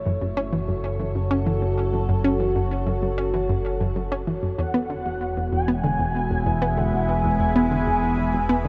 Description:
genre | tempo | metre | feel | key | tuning
ambient, sequencer-driven space music | 96 BPM | 4/4 | straight | unclear | A4 = 440 Hz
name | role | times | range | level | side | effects
evolving wavetable pad | sustained chords | 0.0-8.7 s | E3 to B5 | -29 LUFS | equal | chorus, built-in reverb, shimmer reverb
fat analog bass | bass | 0.0-8.7 s | E1 to F#1 | -29 LUFS | equal | tube saturation
analog pluck | riff | 0.1-8.7 s | E2 to C#4 | -28 LUFS | equal | chorus, cassette tape, tape echo
expressive synth lead | melody | 4.6-8.7 s | F#5 to G#5 | -29 LUFS | equal | ensemble chorus, vintage 12-bit sampler grit, shimmer reverb, tape echo
room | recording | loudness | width
wet huge ambient reverb, RT60 8.8 s | dark, warm production | -23 LUFS | mono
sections
0.0-8.7 A section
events
none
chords
0.0 F#m; 4.6 E

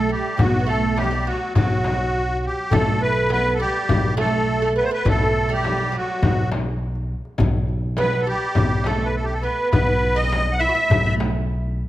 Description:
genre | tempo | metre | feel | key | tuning
Arabic maqam ensemble | 103 BPM | 4/4 | straight | B maqam hijaz | A4 = 437 Hz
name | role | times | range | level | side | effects
musette accordion | melody | 0.0-11.1 s | F#4 to F#5 | -22 LUFS | equal | none
oud | second line | 0.0-11.2 s | F#3 to F#4 | -26 LUFS | right 4 dB | none
upright bass | bass | 0.0-11.8 s | B1 | -24 LUFS | equal | none
darbuka | percussion | 0.4-11.6 s | none | -23 LUFS | left 2 dB | none
frame drum | percussion | 0.4-11.3 s | none | -27 LUFS | left 3 dB | none
room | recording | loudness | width
moderate recital hall reverb, RT60 1.9 s | none | -18 LUFS | side -15 dB against mid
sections
0.0-11.9 A section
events
none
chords
none

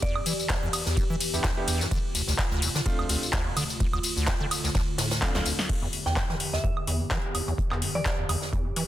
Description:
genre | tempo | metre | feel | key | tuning
acid house | 127 BPM | 4/4 | swing 56% on 16ths | unclear | A4 = 440 Hz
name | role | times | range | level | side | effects
soft synth bell | melody | 0.0-0.7, 6.1-8.1 s | D5 to G5 | -36 LUFS | right 1 dB | chorus, analog delay
warbly tape-like pad | sustained chords | 0.0-8.9 s | D2 to G4 | -35 LUFS | equal | chorus, built-in reverb, sidechain pumping
acid bass, square | riff | 0.0-8.8 s | D2 to E3 | -31 LUFS | equal | analog chorus, sidechain pumping
compact cocktail drum kit | drums | 0.0-8.9 s | hi-hat, snare drum | -36 LUFS | right 2 dB | high-pass filter on hats, soft clipping on snare, high-pass filter on snare, high-pass filter on room
electro analog drum machine | drums | 0.0-8.9 s | crash cymbal, handclaps, hi-hat, ride cymbal, snare drum, tambourine, woodblock | -29 LUFS | left 1 dB | none
electronic kick drum | drums | 0.0-8.6 s | none | -29 LUFS | equal | none
clear concert grand piano | stabs | 1.3-5.5 s | A3 to G4 | -35 LUFS | right 2 dB | analog delay
room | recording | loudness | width
light reverb | dense, heavily limited modern master | -24 LUFS | side -13 dB against mid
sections
0.0-5.7 A section; 5.7-8.9 B section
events
drop 0.0-5.7; drum fill 5.2-5.7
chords
0.0 Em7; 1.9 Dm7; 5.7 Em7

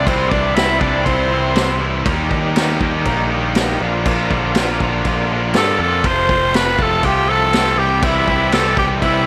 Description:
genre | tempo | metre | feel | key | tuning
classic rock | 121 BPM | 4/4 | straight | unclear | A4 = 440 Hz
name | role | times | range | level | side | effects
growling tenor saxophone | melody | 0.0-1.8, 5.6-9.3 s | C4 to C5 | -20 LUFS | equal | slapback echo
octave-fuzz lead guitar | second line | 0.0-1.8, 5.6-9.3 s | C5 to C6 | -26 LUFS | equal | distortion, slapback echo
bright tonewheel organ | sustained chords | 0.0-9.3 s | E3 to C5 | -31 LUFS | equal | none
crunchy overdriven guitar | riff | 0.0-9.3 s | F2 to G4 | -22 LUFS | equal | none
modern bright picked electric bass | bass | 0.0-9.3 s | F1 to G2 | -24 LUFS | equal | none
vintage drum kit | drums | 0.1-9.1 s | crash cymbal, kick drum, snare drum | -22 LUFS | equal | none
room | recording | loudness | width
light reverb | none | -16 LUFS | mono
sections
0.0-9.3 A section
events
none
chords
0.0 C; 2.1 Eb; 3.8 Bb; 6.0 F; 7.8 C

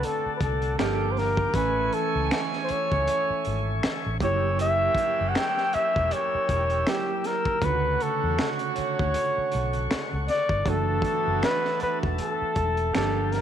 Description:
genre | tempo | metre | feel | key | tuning
R&B, neo-soul | 79 BPM | 4/4 | swing 56% on 16ths | unclear | A4 = 440 Hz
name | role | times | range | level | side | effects
mellow flugelhorn | melody | 0.0-13.4 s | G4 to G5 | -26 LUFS | left 2 dB | none
tine electric piano | accompaniment | 0.0-13.4 s | C#3 to G#5 | -33 LUFS | right 13 dB | medium stereo tremolo
mellow tonewheel organ | sustained chords | 0.0-13.4 s | Bb3 to E6 | -34 LUFS | left 1 dB | slow rotary speaker
clear saxophone section | stabs | 0.0-13.3 s | D3 to G#5 | -34 LUFS | right 12 dB | none
crunchy breakbeat drum kit | drums | 0.0-13.4 s | finger snaps, hi-hat, kick drum, snare drum | -30 LUFS | left 1 dB | none
vintage muted fingered electric bass | bass | 0.3-13.4 s | E1 to E2 | -29 LUFS | left 1 dB | none
room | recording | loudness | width
light reverb | 1960s-style stereo | -23 LUFS | side -9 dB against mid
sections
0.0-13.4 A section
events
none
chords
0.0 D7; 0.8 Gm7; 1.5 Amaj7; 4.2 F#7b9; 7.6 Dmaj7; 10.7 E9sus4/F#

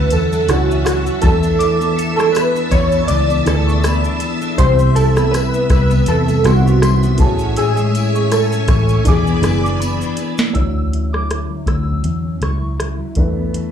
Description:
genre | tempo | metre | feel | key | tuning
indie pop, bedroom pop | 80 BPM | 4/4 | swing 55% on 16ths | unclear | A4 = 440 Hz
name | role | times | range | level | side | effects
warbly lo-fi synth keys | melody | 0.0-9.8 s | F#4 to D5 | -18 LUFS | right 1 dB | ensemble chorus, slapback echo
soft synth bell | second line | 0.0-12.6 s | A5 to E6 | -27 LUFS | right 1 dB | ensemble chorus, slapback echo
clean electric guitar | accompaniment | 0.0-13.7 s | A2 to A4 | -20 LUFS | left 4 dB | ensemble chorus, vibrato effect, low-pass filter, slapback echo
dark upright piano | accompaniment | 0.0-13.7 s | D#3 to C#5 | -24 LUFS | right 5 dB | low-pass filter, slapback echo
string machine, violins | sustained chords | 0.0-10.5 s | C#5 to E6 | -27 LUFS | equal | ensemble chorus
vintage muted fingered electric bass | bass | 0.0-13.7 s | E1 to E2 | -18 LUFS | equal | none
soft vintage rhythm box | drums | 0.1-13.7 s | hi-hat, kick drum, rim click, shaker, snare drum | -19 LUFS | equal | none
tambourine | percussion | 0.1-10.5 s | none | -38 LUFS | left 5 dB | none
room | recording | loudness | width
light reverb | live gig heard through the venue's PA, club reverb | -13 LUFS | side -8 dB against mid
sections
0.0-10.6 A section; 10.6-13.7 B section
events
drum fill 9.8-10.6; filter sweep 10.6-13.7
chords
0.0 Dmaj9; 1.2 E7sus4; 4.6 Cmaj7; 7.2 Amaj7; 9.1 E7; 10.6 Dmaj9; 13.2 E7sus4

